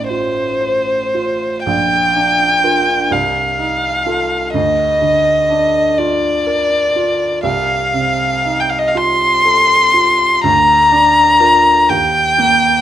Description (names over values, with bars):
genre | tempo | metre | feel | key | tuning
classical, romantic duo for violin and grand piano | 41 BPM (dotted quarters) | 6/8 | uneven beats, rubato | Bb major | A4 = 443 Hz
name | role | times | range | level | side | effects
dark violin | melody | 0.0-12.8 s | C5 to C6 | -12 LUFS | left 1 dB | none
clear baby grand piano | accompaniment | 0.0-12.8 s | A1 to C5 | -19 LUFS | right 3 dB | none
room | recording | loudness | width
moderate large studio reverb, RT60 1.2 s | none | -11 LUFS | side -11 dB against mid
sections
0.0-12.8 A section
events
none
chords
0.0 F7/A; 1.7 Bb; 3.1 F7/C; 4.5 Bb/D; 7.4 F7/C; 10.4 Bb/D; 11.9 Eb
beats
0.10 | 1.66 3.12 | 4.54 5.98 | 7.44 8.97 | 10.45 11.90